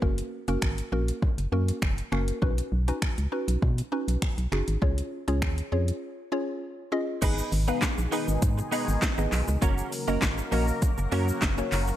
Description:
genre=dance-pop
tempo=100 BPM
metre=4/4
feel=straight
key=F# major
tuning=A4 = 439 Hz
part: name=mallet-like synth pluck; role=accompaniment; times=0.0-11.9 s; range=A#3 to E#5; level=-31 LUFS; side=left 1 dB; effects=chorus, phaser, sidechain pumping
part: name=organ-like FM bass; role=bass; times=0.0-11.9 s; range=F#1 to B2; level=-27 LUFS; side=equal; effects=sidechain pumping
part: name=deep house drum kit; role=drums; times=0.0-12.0 s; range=crash cymbal, finger snaps, handclaps, hi-hat, kick drum, shaker, snare drum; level=-28 LUFS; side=equal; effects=overdrive
part: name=sweeping resonant pad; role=sustained chords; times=7.2-12.0 s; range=B2 to A#4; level=-34 LUFS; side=equal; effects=chorus, sidechain pumping
part: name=direct-recorded clean electric guitar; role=riff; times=7.2-11.9 s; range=A#3 to B4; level=-36 LUFS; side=right 6 dB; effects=ensemble chorus
room=little or no reverb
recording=none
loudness=-25 LUFS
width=side -12 dB against mid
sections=0.0-7.2 A section; 7.2-12.0 B section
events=break 6.0-7.2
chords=0.0 F#; 2.4 Badd9; 4.8 C#; 7.2 G#m; 9.6 F#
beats=| 0.02 0.62 1.22 1.82 | 2.42 3.02 3.62 4.22 | 4.82 5.42 6.02 6.62 | 7.22 7.82 8.42 9.02 | 9.62 10.22 10.82 11.42

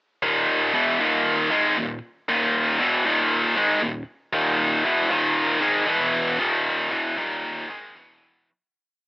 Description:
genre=metal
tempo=117 BPM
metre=4/4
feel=straight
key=unclear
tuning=A4 = 439 Hz
part: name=scooped high-gain guitar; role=solo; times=0.2-8.5 s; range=Eb2 to Ab3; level=-19 LUFS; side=equal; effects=distortion, cassette tape
room=light reverb, digital ambience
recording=home recording on cassette, AM radio sound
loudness=-19 LUFS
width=side -22 dB against mid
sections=0.2-8.5 riff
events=fade-out 6.4-8.5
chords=0.2 Eb5; 5.9 E5; 6.4 Eb5; 8.0 E5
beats=| 0.24 0.75 1.26 1.77 | 2.28 2.79 3.30 3.81 | 4.33 4.84 5.36 5.87 | 6.39 6.91 7.43 7.95

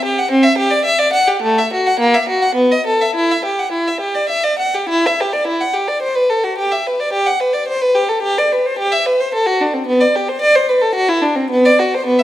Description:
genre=classical, baroque-style suite movement for unaccompanied violin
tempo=98-112 BPM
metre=3/4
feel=rubato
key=E minor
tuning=A4 = 445 Hz
part: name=warm violin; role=solo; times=0.0-12.2 s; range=A3 to F#5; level=-13 LUFS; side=equal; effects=none
room=wet recital hall reverb, RT60 1.5 s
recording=none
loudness=-13 LUFS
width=side -13 dB against mid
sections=0.0-4.9 A section; 4.9-12.2 B section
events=none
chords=none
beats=0.30 0.84 | 1.41 1.98 2.54 | 3.13 3.71 4.29 | 4.90 5.47 6.03 | 6.58 7.13 7.68 | 8.23 8.79 9.33 | 9.87 10.41 10.95 | 11.50 12.06

